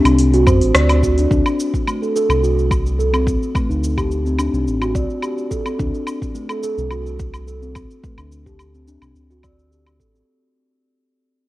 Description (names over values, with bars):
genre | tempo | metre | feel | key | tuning
organic downtempo | 107 BPM | 4/4 | straight | unclear | A4 = 437 Hz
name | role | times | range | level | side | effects
steel tongue drum | arpeggios | 0.0-10.2 s | A3 to D5 | -19 LUFS | equal | tape echo
round analog bass | bass | 0.0-10.2 s | A1 to F#2 | -18 LUFS | equal | sidechain pumping
afro-pop drum kit | drums | 0.1-10.3 s | hi-hat, rim click, shaker, woodblock | -21 LUFS | equal | none
electronic kick drum | drums | 0.5-10.1 s | none | -21 LUFS | equal | none
room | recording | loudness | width
light reverb | worn, warbling old tape, cassette tape, warbly pitch drift | -16 LUFS | side -16 dB against mid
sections
0.0-1.3 A section; 1.3-10.3 B section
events
fade-out 1.3-10.3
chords
0.0 N.C.; 1.3 D7(no3); 3.5 N.C.; 5.8 D7(no3); 8.0 N.C.